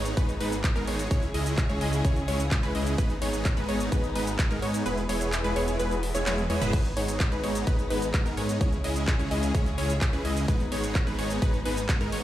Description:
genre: EDM, festival progressive house.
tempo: 128 BPM.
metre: 4/4.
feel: straight.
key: G# minor.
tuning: A4 = 442 Hz.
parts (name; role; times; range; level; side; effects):
dark studio string section; sustained chords; 0.0-12.2 s; C#3 to B4; -36 LUFS; left 2 dB; sidechain pumping.
wide unison pluck; arpeggios; 0.0-12.2 s; A#4 to D#5; -35 LUFS; equal; sidechain pumping, dub echo.
supersaw chords; riff; 0.0-12.2 s; G#3 to D#5; -30 LUFS; right 1 dB; sidechain pumping, dub echo.
wide detuned saw bass; bass; 0.0-12.2 s; E1 to G#2; -31 LUFS; equal; chorus, sidechain pumping.
big-room dance drum kit; drums; 0.1-12.2 s; crash cymbal, handclaps, hi-hat, shaker, toms; -34 LUFS; equal; none.
electronic kick drum; drums; 0.2-12.0 s; none; -26 LUFS; equal; none.
reverse cymbal; sound effects; 6.4-6.7 s; none; -43 LUFS; right 5 dB; none.
room: little or no reverb.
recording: played on a big sound system in a bare room, large studio reverb.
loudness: -24 LUFS.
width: side -13 dB against mid.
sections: 0.0-12.2 A section.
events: kick drops out 4.9-6.7; drum fill 6.3-6.7; reverse cymbal 6.4-6.7.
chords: 0.0 G#m; 1.1 C#m; 3.0 G#m; 4.9 E; 6.7 G#m; 8.6 C#m; 10.5 G#m.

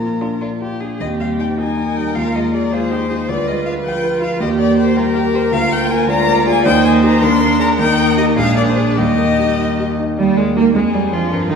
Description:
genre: quick classical-period movement for piano quintet.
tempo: 106 BPM (dotted quarters).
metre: 6/8.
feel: rubato.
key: Eb major.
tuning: A4 = 436 Hz.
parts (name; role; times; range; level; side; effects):
rich violin; melody; 0.0-11.6 s; Ab4 to C6; -20 LUFS; left 4 dB; none.
warm cello; second line; 0.0-11.6 s; Eb3 to F4; -21 LUFS; right 5 dB; none.
warm concert grand piano; accompaniment; 0.0-11.6 s; Bb1 to G5; -17 LUFS; left 1 dB; none.
rich violin; second line; 0.2-11.6 s; G3 to D5; -23 LUFS; left 2 dB; none.
rich viola; accompaniment; 0.2-11.6 s; Eb3 to G4; -22 LUFS; right 3 dB; none.
room: wet recital hall reverb, RT60 1.6 s.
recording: heard from further back in the room.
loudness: -13 LUFS.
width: side -6 dB against mid.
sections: 0.0-1.0 A section; 1.0-10.2 B section; 10.2-11.6 C section.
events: none.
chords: 0.0 Bb; 1.0 Eb; 2.2 Fm7/Eb; 3.3 Ddim7; 4.4 Eb; 5.5 Bb/D; 6.1 Bb7/D; 6.7 Eb; 7.2 Bb7/Eb; 7.8 Eb; 8.4 Bb7; 9.0 Eb; 10.7 Ddim/F.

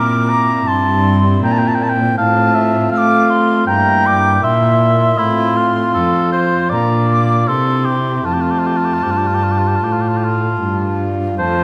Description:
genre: classical, baroque-style sonata movement with continuo.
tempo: 79 BPM.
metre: 4/4.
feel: straight.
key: F major.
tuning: A4 = 440 Hz.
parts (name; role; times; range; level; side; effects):
warm oboe; melody; 0.0-11.6 s; E4 to Bb5; -20 LUFS; equal; none.
bright wooden flute; second line; 0.0-11.6 s; A5 to E6; -22 LUFS; equal; none.
pipe organ, foundations; accompaniment; 0.0-11.6 s; F2 to F4; -21 LUFS; equal; none.
warm cello; bass; 0.0-11.6 s; F2 to A3; -20 LUFS; equal; none.
room: wet recital hall reverb, RT60 1.7 s.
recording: none.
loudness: -15 LUFS.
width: mono.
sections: 0.0-11.4 A section.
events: none.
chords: 0.0 C7; 2.2 F/A; 3.7 Edim/G; 5.2 F/A; 6.7 Bb; 7.5 C; 8.3 F.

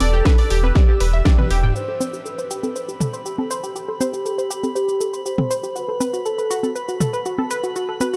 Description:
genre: progressive house.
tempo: 120 BPM.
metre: 4/4.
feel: straight.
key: A dorian.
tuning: A4 = 440 Hz.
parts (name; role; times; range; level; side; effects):
warm velvety synth lead; melody; 0.0-8.2 s; F#4 to C5; -28 LUFS; equal; chorus, delay.
analog pluck; arpeggios; 0.0-8.2 s; F#4 to G5; -28 LUFS; equal; chorus, sidechain pumping, delay.
round analog bass; bass; 0.0-1.7 s; E1; -20 LUFS; equal; tube saturation, sidechain pumping.
house drum kit; drums; 0.0-8.2 s; hi-hat, shaker, snare drum, toms; -31 LUFS; equal; overdrive.
electronic congas and toms; percussion; 0.0-8.1 s; none; -26 LUFS; equal; overdrive, sidechain pumping on perc, sidechain pumping on toms.
drifting glass-harmonics texture; texture; 0.0-8.2 s; B5 to E6; -38 LUFS; equal; chorus, built-in reverb, sidechain pumping.
electronic kick drum; drums; 0.3-1.4 s; none; -16 LUFS; equal; overdrive.
room: light reverb, digital ambience.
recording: dark, warm production.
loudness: -21 LUFS.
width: mono.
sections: 0.0-1.8 A section; 1.8-8.2 B section.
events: drum fill 1.3-1.8; band accent 1.3.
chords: 0.0 Em7; 1.8 Am7; 5.8 D6 (rootless).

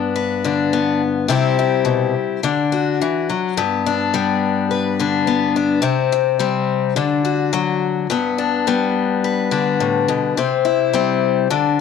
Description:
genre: highlife.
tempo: 106 BPM.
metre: 4/4.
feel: straight.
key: G major.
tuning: A4 = 440 Hz.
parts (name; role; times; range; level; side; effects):
picked steel-string acoustic guitar; solo; 0.0-11.8 s; G2 to B4; -16 LUFS; left 6 dB; none.
room: moderate echo chamber reverb, RT60 1.4 s.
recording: none.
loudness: -16 LUFS.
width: side -6 dB against mid.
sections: 0.0-11.8 A section.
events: none.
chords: 0.0 G; 1.3 C; 2.4 D; 3.6 G; 5.8 C5; 7.0 D; 8.1 G; 10.4 C.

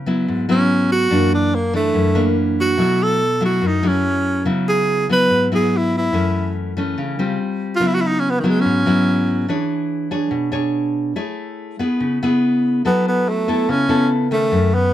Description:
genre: bossa nova.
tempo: 143 BPM.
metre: 4/4.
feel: straight.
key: C# minor.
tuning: A4 = 440 Hz.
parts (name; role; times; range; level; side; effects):
nylon-string guitar; accompaniment; 0.0-14.9 s; F#2 to C#5; -18 LUFS; left 1 dB; none.
clear tenor saxophone; melody; 0.5-9.6, 12.9-14.9 s; D#3 to B4; -18 LUFS; right 2 dB; plate reverb.
room: moderate studio ambience, RT60 0.5 s.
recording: none.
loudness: -16 LUFS.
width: side -12 dB against mid.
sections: 0.0-12.8 A section; 12.8-14.9 B section.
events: tenor saxophone solo 0.0-12.8.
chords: 0.0 C#m7; 1.1 F#7alt; 2.8 B7sus4; 4.5 C#m7; 6.1 F#m7; 7.4 G7sus4; 7.8 C#m7; 9.5 E6; 11.2 Amaj7; 12.0 C#m7; 12.8 F#m7.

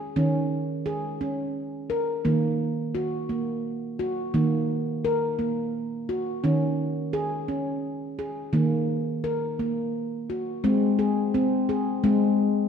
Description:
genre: world meditative, meditative tuned percussion.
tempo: 86 BPM.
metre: 3/4.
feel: swing 56% on 16ths.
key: Eb dorian.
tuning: A4 = 440 Hz.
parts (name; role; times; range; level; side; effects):
handpan; solo; 0.0-12.7 s; Eb3 to Bb4; -24 LUFS; equal; none.
room: wet echo chamber reverb, RT60 1.6 s.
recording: dark, warm production.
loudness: -24 LUFS.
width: side -7 dB against mid.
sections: 0.0-10.6 A section; 10.6-12.7 B section.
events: none.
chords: 0.0 Db5/Eb; 2.2 Ebm; 6.4 Db5/Eb; 8.5 Ebm; 10.6 Ab.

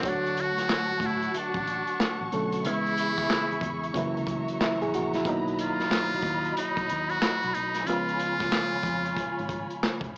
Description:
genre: R&B, neo-soul.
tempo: 92 BPM.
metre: 4/4.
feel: swing 63% on 16ths.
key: unclear.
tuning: A4 = 440 Hz.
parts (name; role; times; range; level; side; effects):
trumpet with metal mute; melody; 0.0-9.8 s; D4 to F#4; -29 LUFS; equal; cassette tape.
reed electric piano; accompaniment; 0.0-10.2 s; B2 to C#5; -31 LUFS; right 1 dB; cassette tape.
warm studio string section; sustained chords; 0.0-10.2 s; F#3 to C#6; -32 LUFS; left 1 dB; cassette tape.
vintage muted fingered electric bass; bass; 0.0-10.1 s; E#1 to A2; -36 LUFS; equal; none.
crunchy breakbeat drum kit; drums; 0.0-10.1 s; handclaps, hi-hat, kick drum, snare drum; -31 LUFS; equal; cassette tape.
room: light reverb.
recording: home recording on cassette, small speaker sound.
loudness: -25 LUFS.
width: side -27 dB against mid.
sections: 0.0-10.2 A section.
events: none.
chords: 0.0 Dmaj7; 2.6 C#m7; 3.9 F#7; 5.2 Bmaj7; 7.9 C#7.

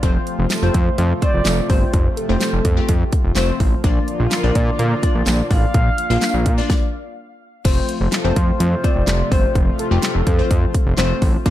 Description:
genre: dance-pop.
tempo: 126 BPM.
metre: 4/4.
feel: straight.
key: F major.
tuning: A4 = 440 Hz.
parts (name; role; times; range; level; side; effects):
glassy wavetable pluck; accompaniment; 0.0-11.5 s; A3 to F5; -24 LUFS; left 3 dB; chorus, sidechain pumping.
chorused pulse-width pad; sustained chords; 0.0-11.5 s; C3 to F4; -27 LUFS; left 1 dB; sidechain pumping.
fat analog bass; bass; 0.0-11.5 s; F1 to Bb2; -18 LUFS; equal; sidechain pumping.
pop drum kit; drums; 0.0-11.5 s; crash cymbal, handclaps, hi-hat, kick drum, snare drum; -18 LUFS; equal; none.
mellow horn-like synth lead; melody; 0.5-10.7 s; A4 to F5; -26 LUFS; right 1 dB; chorus, digital delay.
tambourine; percussion; 0.5-6.3 s; none; -31 LUFS; right 8 dB; none.
room: digital ambience.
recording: dark, warm production.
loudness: -15 LUFS.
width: side -13 dB against mid.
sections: 0.0-7.7 A section; 7.7-11.5 A section.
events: stop 6.7-7.7.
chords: 0.0 F; 3.8 Bb; 7.7 F.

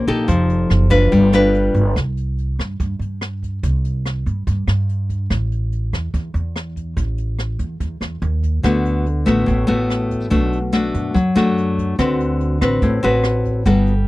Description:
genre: bossa nova.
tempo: 144 BPM.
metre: 4/4.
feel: straight.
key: D mixolydian.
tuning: A4 = 440 Hz.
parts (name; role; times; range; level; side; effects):
nylon-string guitar; accompaniment; 0.0-1.9, 8.6-14.1 s; A2 to Cb5; -16 LUFS; left 2 dB; none.
upright bass; bass; 0.0-14.1 s; F1 to G2; -20 LUFS; right 1 dB; none.
jazz brush drum kit; drums; 0.1-14.0 s; hi-hat, kick drum, rim click; -24 LUFS; right 1 dB; none.
room: little or no reverb.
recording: dry, close 1970s-style studio recording.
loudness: -16 LUFS.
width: side -18 dB against mid.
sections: 0.0-2.0 A section; 2.0-14.1 B section.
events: none.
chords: 0.3 F9; 1.1 G7; 2.0 C5; 5.3 A5; 8.2 N.C.; 8.6 D6; 10.3 Bm7; 12.0 D6.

